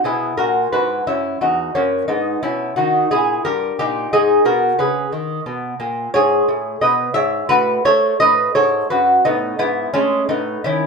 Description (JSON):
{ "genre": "classical, baroque-style dance for lute", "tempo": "88 BPM", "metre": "3/4", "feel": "rubato", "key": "unclear", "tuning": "A4 = 440 Hz", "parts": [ { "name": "lute", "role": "solo", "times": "0.0-10.9 s", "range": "E2 to E5", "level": "-15 LUFS", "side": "equal", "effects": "none" } ], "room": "moderate studio reverb, RT60 0.7 s", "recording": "band playing live in one room", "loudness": "-15 LUFS", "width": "side -4 dB against mid", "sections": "0.0-10.9 A section", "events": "none", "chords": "0.1 B; 2.1 G#m; 3.4 D#/G; 4.1 G#m; 6.1 G#madd11; 7.5 F#m/A; 8.2 B5; 9.6 E/G#; 10.3 F#m/A (rootless)" }